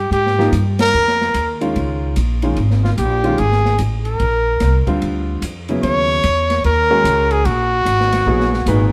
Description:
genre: modal jazz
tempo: 147 BPM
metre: 4/4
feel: swing 64% on 8ths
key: Eb phrygian from 5.8 s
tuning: A4 = 440 Hz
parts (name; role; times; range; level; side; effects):
- warm trumpet; melody; 0.0-8.9 s; F4 to Db5; -19 LUFS; equal; none
- upright bass; bass; 0.0-8.9 s; Ab1 to Ab2; -20 LUFS; equal; none
- open jazz drum kit; drums; 0.1-8.8 s; hi-hat, kick drum, ride cymbal, snare drum; -30 LUFS; equal; none
- clear baby grand piano; accompaniment; 0.4-8.9 s; Bb2 to Cb5; -23 LUFS; equal; none
room: moderate plate reverb, RT60 1.6 s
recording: heard from further back in the room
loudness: -16 LUFS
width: mono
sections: 0.0-5.8 A section; 5.8-8.9 B section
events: band accent 0.7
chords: 0.0 Dbadd9; 4.2 Bb; 5.8 Ebm7

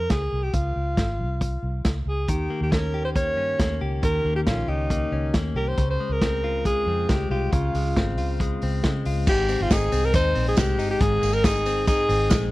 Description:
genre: jangly indie pop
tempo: 137 BPM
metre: 4/4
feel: straight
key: unclear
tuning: A4 = 436 Hz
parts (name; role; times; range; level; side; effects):
- bright alto saxophone; melody; 0.0-12.5 s; Eb4 to Db5; -26 LUFS; equal; tape echo
- vintage muted fingered electric bass; bass; 0.0-12.5 s; G1 to Db3; -26 LUFS; equal; none
- vintage drum kit; drums; 0.1-12.4 s; crash cymbal, hi-hat, kick drum, ride cymbal, snare drum; -24 LUFS; equal; none
- direct-recorded clean electric guitar; arpeggios; 2.3-12.5 s; Ab2 to G4; -29 LUFS; left 3 dB; none
- tambourine; percussion; 9.3-12.4 s; none; -39 LUFS; right 17 dB; none
room: small room ambience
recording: dry, close 1970s-style studio recording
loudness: -21 LUFS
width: side -18 dB against mid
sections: 0.0-9.3 A section; 9.3-12.5 B section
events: none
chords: 0.0 Dbmaj7; 2.3 Eb7; 5.8 Dbmaj7; 9.3 Ab

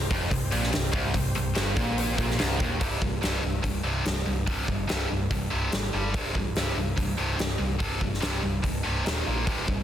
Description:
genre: hard rock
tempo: 144 BPM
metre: 4/4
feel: straight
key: C minor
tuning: A4 = 440 Hz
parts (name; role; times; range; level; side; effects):
- overdriven tonewheel organ; sustained chords; 0.0-2.8 s; C4 to C5; -39 LUFS; right 1 dB; none
- biting overdriven guitar; riff; 0.0-2.8 s; C2 to Bb2; -32 LUFS; right 1 dB; none
- heavy high-gain guitar; riff; 0.0-9.8 s; C2 to Bb3; -29 LUFS; equal; distortion
- picked electric bass; bass; 0.0-9.8 s; C1 to C2; -31 LUFS; equal; none
- huge arena drum kit; drums; 0.1-9.8 s; hi-hat, kick drum, snare drum; -29 LUFS; equal; none
room: studio reverb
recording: dense, heavily limited modern master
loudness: -24 LUFS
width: side -10 dB against mid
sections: 0.0-2.8 A section; 2.8-9.8 B section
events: none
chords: 0.0 Cm; 2.8 C5; 5.9 G5; 6.1 C5; 9.1 Eb5; 9.3 Bb5

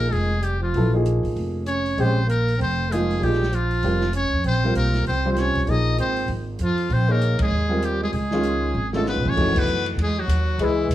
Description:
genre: modal jazz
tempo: 195 BPM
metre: 4/4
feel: swing 60% on 8ths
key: Bb dorian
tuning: A4 = 440 Hz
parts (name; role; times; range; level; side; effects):
- trumpet with metal mute; melody; 0.0-10.9 s; E4 to Eb5; -26 LUFS; left 2 dB; plate reverb
- breathy trombone; second line; 0.0-10.9 s; E3 to Eb4; -27 LUFS; right 3 dB; none
- warm baby grand piano; accompaniment; 0.0-10.9 s; Eb3 to D#5; -25 LUFS; equal; none
- upright bass; bass; 0.0-10.9 s; F1 to F#2; -23 LUFS; equal; none
- open jazz drum kit; drums; 0.0-10.9 s; crash cymbal, hi-hat, kick drum, ride cymbal, snare drum, toms; -30 LUFS; right 1 dB; none
room: moderate club reverb, RT60 0.6 s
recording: small room ambience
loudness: -19 LUFS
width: side -13 dB against mid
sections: 0.0-9.4 A section; 9.4-10.9 B section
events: band accent 7.4, 9.5; drum fill 8.7-9.4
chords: 0.0 Bbm9; 4.4 Ab; 8.1 Db7; 9.4 F#m11

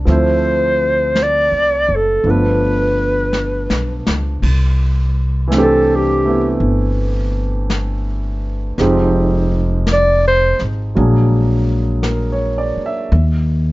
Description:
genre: jazz ballad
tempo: 55 BPM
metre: 4/4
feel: swing 68% on 8ths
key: C major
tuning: A4 = 440 Hz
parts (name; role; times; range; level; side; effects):
- warm grand piano; accompaniment; 0.0-13.2 s; E3 to E5; -19 LUFS; right 1 dB; none
- upright bass; bass; 0.0-13.7 s; F1 to Eb2; -17 LUFS; equal; none
- breathy clarinet; melody; 0.1-10.6 s; G4 to D5; -15 LUFS; equal; none
- jazz brush drum kit; drums; 0.1-13.7 s; brushed snare drum, crash cymbal, hi-hat, kick drum, snare drum; -23 LUFS; left 1 dB; none
room: light reverb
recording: nothing above 7.7 kHz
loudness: -13 LUFS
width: side -19 dB against mid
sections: 0.0-4.4 A section; 4.4-13.7 B section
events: drum fill 3.3-4.4; clarinet solo 4.4-13.7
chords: 0.1 Dm7; 2.2 G7; 4.4 C69; 8.8 Fm9; 10.9 Bbaug7; 13.1 N.C.

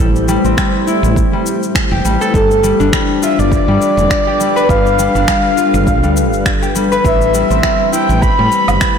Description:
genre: organic downtempo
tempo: 102 BPM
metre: 4/4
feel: swing 56% on 16ths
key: A minor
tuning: A4 = 440 Hz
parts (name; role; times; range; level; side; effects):
- granular cloud pad; sustained chords; 0.0-9.0 s; G3 to C5; -20 LUFS; equal; built-in reverb, sidechain pumping
- concert harp; arpeggios; 0.0-9.0 s; G3 to B4; -16 LUFS; left 4 dB; ping-pong delay
- woody fretless electric bass; bass; 0.0-8.8 s; E1 to A2; -16 LUFS; right 1 dB; transformer saturation, sidechain pumping
- electronic shaker, finger snaps and woodblock; drums; 0.2-8.9 s; none; -21 LUFS; equal; soft clipping on snare
- electronic kick drum; drums; 0.6-8.9 s; none; -17 LUFS; right 1 dB; none
- breathy flute-like synth lead; melody; 2.3-9.0 s; A4 to B5; -15 LUFS; right 1 dB; wide subtle chorus, ping-pong delay
room: moderate lush hall reverb, RT60 2.2 s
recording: blown-out, overdriven recording, overdrive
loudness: -10 LUFS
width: side -7 dB against mid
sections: 0.0-9.0 A section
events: none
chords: 0.0 Am7; 2.3 G7; 7.0 Am7

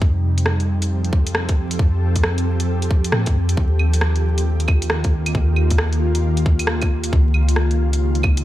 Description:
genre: future garage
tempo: 135 BPM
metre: 4/4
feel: swing 64% on 16ths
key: unclear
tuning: A4 = 440 Hz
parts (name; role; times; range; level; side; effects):
- ethereal airy pad; sustained chords; 0.0-8.4 s; Db3 to A4; -24 LUFS; equal; ensemble chorus, built-in reverb, sidechain pumping
- soft 808-style bass; bass; 0.0-8.4 s; Db2 to A2; -19 LUFS; equal; sidechain pumping
- electronic kick drum; drums; 0.0-8.4 s; none; -17 LUFS; equal; small room reverb
- garage drum kit; drums; 0.4-8.4 s; claves, hi-hat, rim click; -24 LUFS; right 1 dB; small room reverb
room: light reverb, digital ambience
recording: vinyl crackle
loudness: -16 LUFS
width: side -14 dB against mid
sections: 0.0-8.4 A section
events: none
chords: 0.0 F9; 3.6 Eb; 7.1 Db

